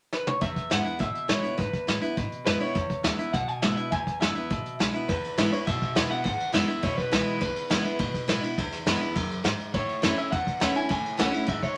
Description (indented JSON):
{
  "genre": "rockabilly",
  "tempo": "206 BPM",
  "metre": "4/4",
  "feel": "straight",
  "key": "E major",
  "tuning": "A4 = 440 Hz",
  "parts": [
    { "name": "electric guitar through a small old amp", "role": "melody", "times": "0.1-11.8 s", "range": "B4 to G#5", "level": "-33 LUFS", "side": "equal", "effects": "none" },
    { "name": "vintage brush drum kit", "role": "drums", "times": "0.1-11.7 s", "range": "hi-hat, kick drum, ride cymbal, snare drum, toms", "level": "-30 LUFS", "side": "equal", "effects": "none" },
    { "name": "picked steel-string acoustic guitar", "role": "accompaniment", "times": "0.4-11.7 s", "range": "E2 to E4", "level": "-32 LUFS", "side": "equal", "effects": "none" },
    { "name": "upright bass", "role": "bass", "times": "0.4-11.7 s", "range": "E1 to B2", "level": "-40 LUFS", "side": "equal", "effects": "none" }
  ],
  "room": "wet studio reverb, RT60 0.5 s",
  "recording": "none",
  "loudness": "-27 LUFS",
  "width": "mono",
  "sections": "0.4-5.1 A section; 5.1-11.8 B section",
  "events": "drum fill 0.1",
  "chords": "0.4 E; 9.7 A",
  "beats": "0.12 | 0.42 0.71 1.00 1.29 | 1.58 1.88 2.17 2.46 | 2.75 3.04 3.33 3.63 | 3.92 4.21 4.50 4.79 | 5.08 5.38 5.67 5.96 | 6.25 6.54 6.83 7.12 | 7.41 7.70 8.00 8.29 | 8.58 8.87 9.16 9.45 | 9.74 10.03 10.32 10.61 | 10.90 11.19 11.48 11.77"
}